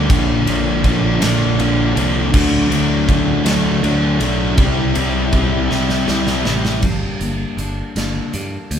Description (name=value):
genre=quiet-loud alternative rock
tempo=53 BPM (dotted quarters)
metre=6/8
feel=straight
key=G dorian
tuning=A4 = 438 Hz
part: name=fuzz guitar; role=riff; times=0.0-6.8 s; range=Bb2 to E4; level=-19 LUFS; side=left 4 dB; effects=distortion
part: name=thick fuzz guitar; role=riff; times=0.0-6.8 s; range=Bb2 to E4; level=-21 LUFS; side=right 6 dB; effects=distortion
part: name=modern bright picked electric bass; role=bass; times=0.0-8.8 s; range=G1 to G2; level=-20 LUFS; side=equal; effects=none
part: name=big rock drum kit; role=drums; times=0.1-8.8 s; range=crash cymbal, hi-hat, kick drum, ride cymbal, snare drum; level=-20 LUFS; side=equal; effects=none
part: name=picked steel-string acoustic guitar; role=arpeggios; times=6.8-8.8 s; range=G2 to D4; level=-25 LUFS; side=left 2 dB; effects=none
room=moderate small room reverb, RT60 0.5 s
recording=band playing live in one room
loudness=-14 LUFS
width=side -8 dB against mid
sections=0.0-6.8 A section; 6.8-8.8 B section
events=drum fill 5.7-6.8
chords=0.1 Bb; 2.3 D; 4.6 C; 6.8 Gm